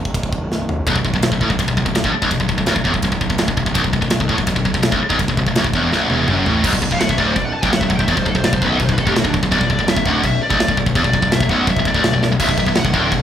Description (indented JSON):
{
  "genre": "heavy metal",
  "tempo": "166 BPM",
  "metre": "4/4",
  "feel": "straight",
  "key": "B minor",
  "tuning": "A4 = 440 Hz",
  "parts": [
    { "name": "fuzz picked electric bass", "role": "bass", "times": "0.0-13.2 s", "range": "B0 to A1", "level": "-23 LUFS", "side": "equal", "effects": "overdrive" },
    { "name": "tight metal drum kit", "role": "drums", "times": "0.1-13.2 s", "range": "china cymbal, crash cymbal, kick drum, ride cymbal, snare drum, toms", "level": "-20 LUFS", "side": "equal", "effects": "none" },
    { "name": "high-gain distorted guitar", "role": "riff", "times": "0.9-13.2 s", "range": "B1 to A2", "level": "-17 LUFS", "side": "left 1 dB", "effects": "distortion" },
    { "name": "high-gain lead guitar", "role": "melody", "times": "6.9-13.2 s", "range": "D4 to A5", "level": "-21 LUFS", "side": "left 1 dB", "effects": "distortion" }
  ],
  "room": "light reverb",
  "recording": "band playing live in one room",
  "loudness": "-14 LUFS",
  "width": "side -9 dB against mid",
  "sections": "0.0-6.6 A section; 6.6-13.2 B section",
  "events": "drum fill 0.5-0.9, 5.9-6.6, 12.2; lead electric guitar solo 6.6-13.2",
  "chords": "0.0 N.C.; 6.6 Bm"
}